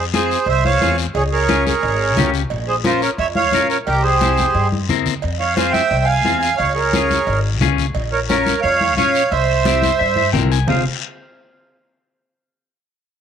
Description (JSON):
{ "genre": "latin, cumbia", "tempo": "176 BPM", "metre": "4/4", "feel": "straight", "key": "F harmonic minor", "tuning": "A4 = 439 Hz", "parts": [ { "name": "accordion", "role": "melody", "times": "0.0-10.8 s", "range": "F4 to Ab5", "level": "-18 LUFS", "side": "right 4 dB", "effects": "none" }, { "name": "accordion", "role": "second line", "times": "0.0-10.8 s", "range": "F4 to F5", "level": "-25 LUFS", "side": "right 8 dB", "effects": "light tremolo tuning" }, { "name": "upright bass", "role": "bass", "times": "0.0-10.8 s", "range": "F1 to G2", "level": "-22 LUFS", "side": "left 1 dB", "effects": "none" }, { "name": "clean electric guitar", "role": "accompaniment", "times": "0.1-10.8 s", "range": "C4 to Ab5", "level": "-22 LUFS", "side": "left 13 dB", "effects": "none" }, { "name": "congas", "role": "percussion", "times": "0.1-10.8 s", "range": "none", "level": "-24 LUFS", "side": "left 2 dB", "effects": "none" }, { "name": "guiro", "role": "percussion", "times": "0.1-10.8 s", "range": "none", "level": "-29 LUFS", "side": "left 15 dB", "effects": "none" }, { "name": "cowbell and timbales", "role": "percussion", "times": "0.5-10.8 s", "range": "none", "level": "-30 LUFS", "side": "right 10 dB", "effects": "none" } ], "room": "moderate spring reverb, RT60 1.8 s, small room ambience", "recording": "1960s-style stereo with parts hard left and right", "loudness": "-14 LUFS", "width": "side -8 dB against mid", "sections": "0.0-10.7 A section; 10.7-12.0 B section", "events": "clean electric guitar fill 9.7-10.7", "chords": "0.0 Fm; 1.2 Db; 2.5 Bbm; 3.9 C7; 5.2 Fm; 6.6 Db; 8.0 Bbm; 9.3 C7; 10.7 Fm" }